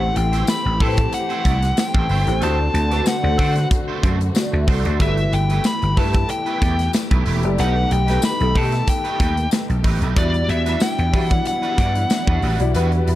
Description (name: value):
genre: polished 1980s jazz-funk pop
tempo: 93 BPM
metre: 4/4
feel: swing 54% on 16ths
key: E minor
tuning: A4 = 440 Hz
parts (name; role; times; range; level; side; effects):
- nasal lead guitar with a parked wah; melody; 0.0-13.2 s; D5 to B5; -24 LUFS; left 1 dB; overdrive
- warm grand piano; accompaniment; 0.0-13.2 s; F#3 to F#5; -26 LUFS; left 3 dB; ensemble chorus
- warm studio string section; sustained chords; 0.0-13.2 s; D3 to G4; -31 LUFS; left 1 dB; none
- electric guitar at the edge of break-up; riff; 0.0-13.1 s; G3 to D5; -30 LUFS; right 7 dB; ensemble chorus
- vintage slap bass; bass; 0.0-13.2 s; E1 to E3; -19 LUFS; equal; none
- modern studio drum kit; drums; 0.2-13.2 s; hi-hat, kick drum, snare drum; -21 LUFS; equal; none
- tambourine; percussion; 0.5-12.3 s; none; -34 LUFS; left 7 dB; none
- clear horn section; second line; 2.4-3.6, 12.7-12.9 s; B3 to C5; -35 LUFS; left 1 dB; none
room: light reverb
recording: dark, warm production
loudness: -16 LUFS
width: side -14 dB against mid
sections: 0.0-13.2 A section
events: band accent 2.4-5.0, 12.7-13.2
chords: 0.0 Am7; 2.4 D7; 5.0 G69; 7.6 B7b13; 10.2 Em9